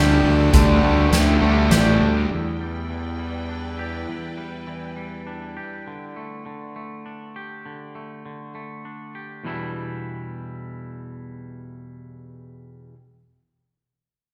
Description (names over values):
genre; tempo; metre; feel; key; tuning
post-rock; 100 BPM; 3/4; straight; E minor; A4 = 440 Hz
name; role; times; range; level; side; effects
evolving wavetable pad; sustained chords; 0.0-5.8 s; E4 to A5; -36 LUFS; equal; ensemble chorus, built-in reverb
twangy electric guitar; arpeggios; 0.0-13.0 s; E2 to G4; -33 LUFS; equal; none
vibraphone with medium mallets; arpeggios; 0.0-2.3 s; D5 to E5; -31 LUFS; equal; none
crunchy overdriven guitar; riff; 0.0-2.3 s; D3 to G4; -26 LUFS; equal; none
sludgy distorted guitar; riff; 0.0-2.3 s; D3 to D4; -24 LUFS; equal; overdrive
fuzz fingered electric bass; bass; 0.0-4.0 s; A1 to E2; -24 LUFS; equal; overdrive
soft-mallet drum kit; drums; 0.5-1.8 s; hi-hat, kick drum, snare drum; -23 LUFS; equal; none
room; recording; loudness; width
wet recital hall reverb, RT60 1.4 s; recorded in a church or concert hall; -20 LUFS; mono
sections
0.0-2.3 A section; 2.3-9.5 B section; 9.5-13.0 C section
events
none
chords
0.0 Dsus4; 2.3 Em7; 5.9 Dsus4; 9.5 Em7